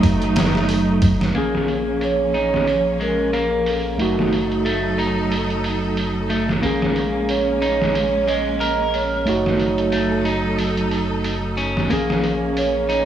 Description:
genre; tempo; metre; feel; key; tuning
trip hop; 91 BPM; 4/4; swing 57% on 16ths; Bb minor; A4 = 442 Hz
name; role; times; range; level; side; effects
vibraphone with soft mallets; melody; 0.0-13.1 s; A4 to Eb5; -23 LUFS; right 3 dB; tape echo
overdriven tine electric piano; accompaniment; 0.0-13.1 s; Gb3 to Ab4; -23 LUFS; right 1 dB; harmonic tremolo, tape echo
rich symphonic string section; sustained chords; 0.0-13.1 s; F3 to A4; -25 LUFS; right 1 dB; none
soft dub sub bass; bass; 0.0-13.1 s; Gb1 to Bb1; -28 LUFS; equal; none
trip hop sampler-style drum kit; drums; 0.0-13.1 s; hi-hat, kick drum, snare drum; -24 LUFS; right 1 dB; overdrive, low-pass filter on hats, small room ambience, low-pass filter on kick, low-pass filter on snare
electric guitar at the edge of break-up; arpeggios; 1.3-13.1 s; Ab3 to Bb4; -27 LUFS; left 3 dB; low-pass filter, tape echo
room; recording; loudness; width
light reverb; small room ambience; -17 LUFS; side -10 dB against mid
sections
0.0-1.4 A section; 1.4-13.1 B section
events
none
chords
0.0 Gbm6; 1.4 Bbm7; 4.0 Gbm6; 6.6 Bbm7; 9.3 Gbm6; 11.9 Bbm7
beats
0.04 0.69 | 1.35 2.01 2.67 3.33 | 3.99 4.65 5.31 5.97 | 6.63 7.29 7.95 8.61 | 9.27 9.93 10.59 11.24 | 11.90 12.56

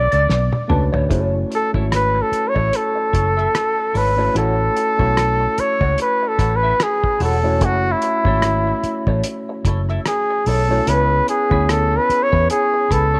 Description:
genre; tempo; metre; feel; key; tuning
lush 1970s-style soul; 74 BPM; 4/4; swing 58% on 16ths; F# minor; A4 = 440 Hz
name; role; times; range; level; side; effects
warm flugelhorn; melody; 0.0-13.2 s; E4 to D5; -20 LUFS; equal; none
tine electric piano; accompaniment; 0.0-13.2 s; A3 to C#5; -28 LUFS; equal; none
electric guitar through a small old amp; riff; 0.0-13.2 s; D4 to E5; -29 LUFS; equal; wah
vintage muted fingered electric bass; bass; 0.0-13.2 s; E1 to E2; -22 LUFS; equal; none
cloth-damped thuddy drum kit; drums; 0.1-13.1 s; hi-hat, kick drum, rim click, snare drum, toms; -26 LUFS; equal; none
room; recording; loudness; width
light reverb, studio reverb; none; -18 LUFS; mono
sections
0.0-1.1 A section; 1.1-13.2 B section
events
drum fill 0.3-1.1; flugelhorn solo 1.1-13.2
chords
0.0 Bm9; 1.1 F#m7; 4.4 A6; 7.6 F#m7; 10.9 C#m7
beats
0.29 | 1.11 1.92 2.73 3.54 | 4.36 5.17 5.99 6.80 | 7.62 8.43 9.24 10.06 | 10.87 11.69 12.50

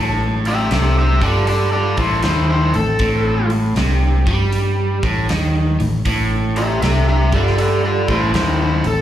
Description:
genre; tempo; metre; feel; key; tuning
blues rock power trio and southern rock; 79 BPM; 4/4; swing 66% on 8ths; A minor; A4 = 440 Hz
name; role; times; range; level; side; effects
overdriven electric guitar; riff; 0.0-9.0 s; A2 to G3; -20 LUFS; right 1 dB; none
vintage muted fingered electric bass; bass; 0.0-9.0 s; A1 to G2; -18 LUFS; equal; none
overdriven slide guitar; melody; 0.5-9.0 s; E4 to E5; -19 LUFS; left 1 dB; slapback echo
smooth overdriven lead guitar; second line; 0.5-9.0 s; C4 to A4; -28 LUFS; right 2 dB; slapback echo
huge arena drum kit; drums; 0.5-9.0 s; hi-hat, kick drum, snare drum; -24 LUFS; equal; none
room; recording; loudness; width
light reverb, small room ambience; live gig heard through the venue's PA, club reverb; -14 LUFS; side -11 dB against mid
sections
0.0-9.0 A section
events
none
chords
0.0 Am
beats
0.71 1.47 2.24 | 3.00 3.77 4.53 5.29 | 6.06 6.82 7.58 8.35

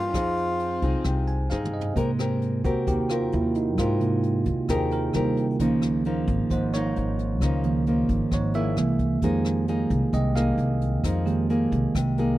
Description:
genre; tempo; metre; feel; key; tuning
bossa nova; 132 BPM; 4/4; straight; unclear; A4 = 441 Hz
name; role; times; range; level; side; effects
breathy tenor saxophone; melody; 0.0-1.5 s; F4; -27 LUFS; equal; none
warm studio violin section; second line; 0.0-1.7 s; C4 to Db4; -37 LUFS; equal; none
bell-like tine electric piano; accompaniment; 0.0-12.4 s; C3 to Ab5; -26 LUFS; right 4 dB; none
nylon-string guitar; accompaniment; 0.0-12.4 s; G2 to Bb4; -29 LUFS; left 3 dB; none
upright bass; bass; 0.0-12.4 s; Ab1 to Ab2; -27 LUFS; equal; none
jazz brush drum kit; drums; 0.1-12.3 s; hi-hat, kick drum, rim click, snare drum, toms; -32 LUFS; equal; none
room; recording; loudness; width
studio reverb; dry, close 1970s-style studio recording; -22 LUFS; side -15 dB against mid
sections
0.0-2.0 A section; 2.0-12.4 B section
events
tine electric piano fill 1.1-2.0; drum fill 1.5-2.0; tine electric piano solo 2.0-12.4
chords
0.1 Fm7; 2.0 Abmaj9; 5.6 Db69; 8.8 Caug7; 9.2 Fm11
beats
| 0.15 0.60 1.06 1.51 | 1.97 2.42 2.87 3.33 | 3.78 4.24 4.69 5.14 | 5.60 6.05 6.51 6.96 | 7.42 7.87 8.32 8.78 | 9.23 9.68 10.14 10.59 | 11.04 11.50 11.95

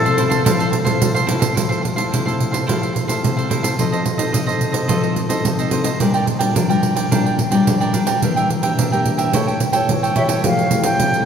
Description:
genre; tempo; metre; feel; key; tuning
samba and choro; 108 BPM; 4/4; straight; F major; A4 = 441 Hz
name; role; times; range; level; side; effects
bright wooden flute; melody; 0.0-1.0, 10.2-11.2 s; A4 to G5; -21 LUFS; equal; none
cavaquinho; accompaniment; 0.0-10.4 s; D4 to G5; -22 LUFS; right 3 dB; none
nylon-string guitar; accompaniment; 0.0-11.3 s; Bb2 to C#5; -20 LUFS; left 3 dB; none
pandeiro; percussion; 0.1-11.3 s; none; -19 LUFS; right 2 dB; none
room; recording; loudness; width
wet church reverb, RT60 3.7 s; recorded in a church or concert hall; -15 LUFS; side -7 dB against mid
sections
0.0-1.6 A section; 1.6-10.4 B section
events
none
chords
0.0 Fmaj7; 1.6 Fmaj9; 3.8 F7; 6.0 Bb6; 8.2 Em7b5; 9.3 A7; 10.4 Fmaj9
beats
0.47 1.02 | 1.57 2.13 2.68 3.24 | 3.79 4.34 4.90 5.46 | 6.01 6.57 7.12 7.67 | 8.23 8.79 9.34 9.89 | 10.45 11.01

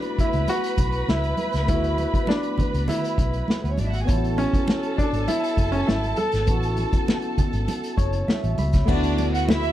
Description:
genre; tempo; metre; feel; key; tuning
lush 1970s-style soul; 100 BPM; 4/4; straight; unclear; A4 = 439 Hz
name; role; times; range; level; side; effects
clear concert grand piano; melody; 0.0-8.2 s; C#4 to A4; -27 LUFS; equal; none
warm studio violin section; second line; 0.0-9.7 s; B3 to B5; -30 LUFS; right 2 dB; none
barky tine electric piano; accompaniment; 0.0-9.7 s; A3 to B5; -29 LUFS; left 1 dB; phaser
vintage drum kit; drums; 0.0-9.7 s; crash cymbal, hi-hat, kick drum, snare drum; -24 LUFS; equal; none
vintage muted fingered electric bass; bass; 0.2-9.7 s; F#1 to D2; -25 LUFS; equal; none
congas; percussion; 0.5-9.6 s; none; -31 LUFS; right 3 dB; none
room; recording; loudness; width
little or no reverb; none; -20 LUFS; side -13 dB against mid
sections
0.0-8.9 A section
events
tine electric piano fill 7.7-8.9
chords
0.0 D69; 4.1 A6; 8.9 D69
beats
0.48 1.08 | 1.68 2.28 2.88 3.48 | 4.08 4.68 5.28 5.88 | 6.48 7.08 7.68 8.28 | 8.88 9.48

